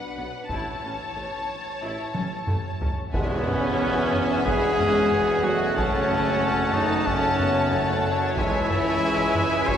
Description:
cinematic, epic orchestral film score; 91 BPM; 4/4; straight; E major from 3.1 s; A4 = 440 Hz
warm symphonic violin section; melody; 0.0-9.8 s; F#5 to A5; -30 LUFS; left 3 dB
warm symphonic violin section; second line; 0.0-9.8 s; B4 to F#5; -32 LUFS; left 3 dB
mellow French horn section; sustained chords; 0.0-9.8 s; E3 to C#5; -28 LUFS; left 2 dB
rich symphonic viola section; accompaniment; 0.2-9.8 s; F#3 to E4; -31 LUFS; right 2 dB
dark symphonic cello section; bass; 0.2-9.8 s; A2 to C#4; -33 LUFS; right 2 dB
rich symphonic double bass section; bass; 0.2-9.8 s; A1 to F#2; -36 LUFS; right 2 dB
warm tuba; bass; 0.2-9.8 s; E1 to C#2; -33 LUFS; right 2 dB
taiko ensemble; drums; 0.5-9.8 s; -30 LUFS; equal
warm woodwind section; sustained chords; 3.1-9.8 s; E3 to F#5; -32 LUFS; equal
bright trumpet; stabs; 3.1-9.8 s; B3 to C#5; -28 LUFS; right 1 dB
tam-tam; percussion; 3.1-5.7 s; -35 LUFS; equal
wet cathedral reverb, RT60 4.6 s; recorded in a church or concert hall; -21 LUFS; side -9 dB against mid
0.0-3.1 A section; 3.1-9.8 B section
drum fill 2.1-3.1; band accent 3.1-3.8
0.0 Bm; 0.5 A; 3.1 Eadd9; 5.8 F#m; 8.4 C#m

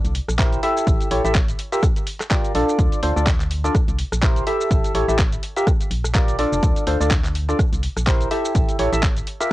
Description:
piano house; 125 BPM; 4/4; swing 56% on 16ths; A4 = 442 Hz
organ-like FM bass; bass; 0.0-9.2 s; F1 to D2; -23 LUFS; equal; sidechain pumping
garage drum kit; drums; 0.0-9.5 s; handclaps, hi-hat, rim click, shaker; -27 LUFS; equal; cassette tape
percussive organ stab; riff; 0.4-9.5 s; D4 to E5; -22 LUFS; equal; lush chorus, sidechain pumping
electronic kick drum; drums; 0.4-9.1 s; -20 LUFS; equal; cassette tape
light reverb; home recording on cassette; -17 LUFS; side -16 dB against mid
0.0-9.5 A section
0.0 C7; 0.6 A7; 1.6 Gm7; 2.8 Dm7; 3.7 C7; 4.5 A7; 5.4 Gm7; 6.6 Dm7; 7.6 C7; 8.3 A7

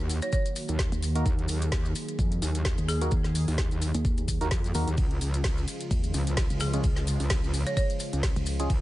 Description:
bass house; 129 BPM; 4/4; swing 56% on 16ths; Eb minor; A4 = 440 Hz
sweeping resonant pad; sustained chords; 0.0-8.8 s; Db3 to Ab4; -37 LUFS; equal; chorus, sidechain pumping
metallic wobble bass; bass; 0.0-8.8 s; Db2 to F2; -29 LUFS; equal; chorus, overdrive, sidechain pumping
garage drum kit; drums; 0.1-8.8 s; hi-hat, ride cymbal, snare drum; -36 LUFS; equal
maracas; percussion; 0.1-8.8 s; -41 LUFS; left 5 dB
folk marimba with hard mallets; melody; 0.2-3.1, 6.6-7.9 s; Ab4 to Db5; -35 LUFS; right 2 dB; digital delay
electronic kick drum; drums; 0.3-8.8 s; -27 LUFS; equal
pulsing pluck wobble bass; bass; 0.9-8.7 s; Db2 to F2; -28 LUFS; equal; chorus, tube saturation, sidechain pumping
percussive organ stab; stabs; 1.2-8.7 s; Ab3 to Bb4; -35 LUFS; right 2 dB; chorus, sidechain pumping, digital delay
little or no reverb; nothing above 10.5 kHz; -25 LUFS; side -16 dB against mid
0.0-8.8 A section
0.0 Ebm; 5.0 Db

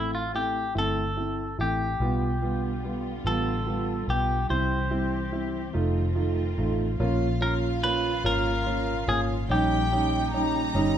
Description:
six-eight pop ballad; 48 BPM (dotted quarters); 6/8; straight; F major; A4 = 440 Hz
clean electric guitar; melody; 0.0-11.0 s; E4 to C5; -29 LUFS; left 1 dB
dark upright piano; accompaniment; 0.0-11.0 s; G3 to F4; -29 LUFS; right 2 dB
vintage muted fingered electric bass; bass; 0.0-11.0 s; F1 to C2; -29 LUFS; left 1 dB
warm studio string section; sustained chords; 2.0-11.0 s; A#2 to G4; -35 LUFS; right 1 dB
warm studio violin section; second line; 7.0-11.0 s; E#5 to A#5; -33 LUFS; left 1 dB
moderate large studio reverb, RT60 1.2 s; band playing live in one room; -24 LUFS; side -9 dB against mid
0.0-7.0 A section; 7.0-11.0 B section
0.0 Am; 2.0 G7/B; 4.5 C; 5.7 F7; 7.0 A#m; 9.5 D#7/A#

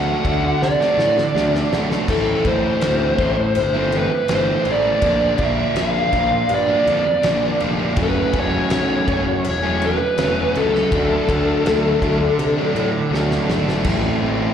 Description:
quiet-loud alternative rock; 82 BPM; 4/4; straight; A4 = 439 Hz
dark smooth lead guitar; melody; 0.0-13.5 s; A4 to F#5; -20 LUFS; equal; overdrive, slapback echo
distorted electric guitar; riff; 0.0-14.5 s; F#2 to E4; -25 LUFS; left 10 dB; distortion, slapback echo
sludgy distorted guitar; riff; 0.0-14.5 s; F#2 to F#4; -23 LUFS; right 7 dB; overdrive, slapback echo
fuzz picked electric bass; bass; 0.0-14.5 s; E1 to C3; -24 LUFS; left 1 dB; overdrive
loose indie drum kit; drums; 0.2-14.0 s; crash cymbal, kick drum, snare drum; -26 LUFS; left 1 dB
light reverb, small room ambience; live gig heard through the venue's PA, recital hall reverb; -16 LUFS; side -8 dB against mid
0.0-13.9 A section
drum fill 0.6-2.1, 13.1-13.9
0.0 D; 2.1 Am; 5.0 Bb; 8.0 F#m; 10.9 D; 13.9 Am

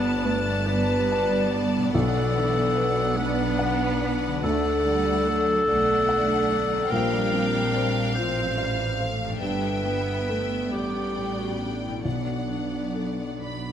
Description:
cinematic, emotional film score for orchestra; 44-49 BPM (dotted quarters); 6/8; rubato; A4 = 440 Hz
clear studio violin section; melody; 0.0-13.7 s; F5 to B5; -34 LUFS; left 5 dB
clear studio violin section; second line; 0.0-13.7 s; D5 to F5; -34 LUFS; left 2 dB
mellow clarinet; second line; 0.0-13.7 s; D4 to C5; -26 LUFS; left 1 dB
felt-muted upright piano; accompaniment; 0.0-13.7 s; B1 to A5; -30 LUFS; left 1 dB
rich symphonic viola section; accompaniment; 0.0-13.7 s; G3 to D4; -32 LUFS; right 1 dB
concert harp; arpeggios; 0.0-13.7 s; G2 to F5; -38 LUFS; left 10 dB
clear symphonic double bass section; bass; 0.0-13.7 s; G1 to D2; -31 LUFS; right 3 dB
rich symphonic cello section; bass; 0.0-13.7 s; E3 to B3; -31 LUFS; right 3 dB
moderate scoring stage reverb, RT60 1.5 s; -22 LUFS; side -9 dB against mid
0.0-13.7 A section
0.0 Gadd9; 1.9 Bm7; 4.4 D; 6.9 Bbsus2; 9.4 Gadd9; 12.0 Bm7

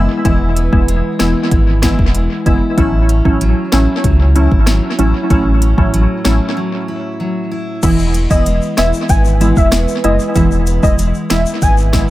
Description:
dancehall; 95 BPM; 4/4; straight; E major; A4 = 440 Hz
glassy wavetable pluck; accompaniment; 0.0-12.1 s; E3 to E4; -17 LUFS; equal; chorus, tape echo
picked steel-string acoustic guitar; arpeggios; 0.0-12.1 s; A2 to E4; -20 LUFS; equal; tape echo
sub bass with octave; bass; 0.0-12.1 s; E1 to C#2; -14 LUFS; equal
afro-pop drum kit; drums; 0.2-12.1 s; crash cymbal, hi-hat, kick drum, rim click, snare drum; -16 LUFS; equal; tape echo
egg shaker; percussion; 7.8-12.1 s; -31 LUFS; left 8 dB
warm velvety synth lead; melody; 8.3-11.7 s; D#5 to G#5; -19 LUFS; left 1 dB; chorus, tape echo
light reverb; echo-heavy mix; -11 LUFS; side -16 dB against mid
0.0-7.8 A section; 7.8-12.1 B section
break 6.6-7.8
0.0 E; 2.8 A6; 7.8 E

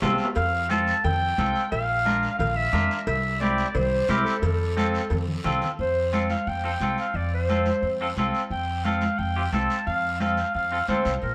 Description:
latin, cumbia; 177 BPM; 4/4; straight; F major; A4 = 439 Hz
clean electric guitar; accompaniment; 0.0-11.1 s; C4 to Bb4; -31 LUFS; equal
upright bass; bass; 0.0-11.3 s; Bb1 to F2; -30 LUFS; equal
congas; percussion; 0.0-11.1 s; -33 LUFS; equal
guiro; percussion; 0.0-11.3 s; -44 LUFS; equal
timbales and cowbell; percussion; 0.0-5.3 s; -37 LUFS; equal
bright clarinet; second line; 0.4-11.3 s; A4 to A5; -28 LUFS; equal
wet plate reverb, RT60 2.9 s; heard from further back in the room; -25 LUFS; mono
0.0-5.8 A section; 5.8-11.3 B section
drum fill 0.0-0.4, 4.8-5.8; clarinet solo 0.0-5.8, 5.8-11.3
0.0 F; 1.7 Bb; 3.1 C; 4.4 F

